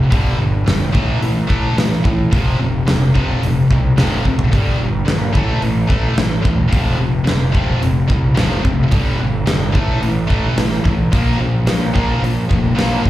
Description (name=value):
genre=hard rock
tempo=109 BPM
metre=4/4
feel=straight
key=A phrygian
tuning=A4 = 441 Hz
part: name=heavy high-gain guitar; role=riff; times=0.0-13.1 s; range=F2 to Bb3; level=-18 LUFS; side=equal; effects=distortion
part: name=fuzz picked electric bass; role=bass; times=0.0-13.1 s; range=E1 to A2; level=-19 LUFS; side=equal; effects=overdrive
part: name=huge arena drum kit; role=drums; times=0.1-13.1 s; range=hi-hat, kick drum, snare drum, toms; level=-17 LUFS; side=equal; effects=none
room=moderate club reverb, RT60 0.5 s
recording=live gig heard through the venue's PA, club reverb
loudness=-14 LUFS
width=side -14 dB against mid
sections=0.0-13.1 A section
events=drum fill 4.2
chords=0.1 G5; 0.9 A5; 2.3 F5; 4.5 Gm; 5.3 A5; 6.7 F5; 8.9 G5; 9.8 A5; 11.1 Bb5